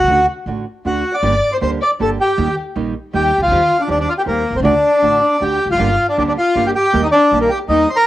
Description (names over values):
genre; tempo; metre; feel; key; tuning
tango; 158 BPM; 3/4; rubato; G minor; A4 = 440 Hz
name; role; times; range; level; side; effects
bandoneon; melody; 0.0-8.1 s; Bb3 to D6; -14 LUFS; equal; cassette tape
warm studio violin section; second line; 0.0-8.1 s; Bb3 to D5; -22 LUFS; left 6 dB; cassette tape
upright bass; bass; 0.0-7.8 s; E1 to Eb2; -22 LUFS; equal; none
nylon-string guitar; accompaniment; 0.1-7.9 s; D3 to G4; -22 LUFS; right 5 dB; cassette tape
bandoneon; stabs; 5.8-7.9 s; Bb3 to G4; -30 LUFS; right 4 dB; none
room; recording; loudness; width
moderate studio reverb, RT60 0.5 s; home recording on cassette; -13 LUFS; side -14 dB against mid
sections
0.0-8.1 A section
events
none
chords
0.1 D; 1.2 Gm; 2.4 Eb; 3.5 Cm/Eb; 4.6 D; 5.8 Gm; 6.9 Eb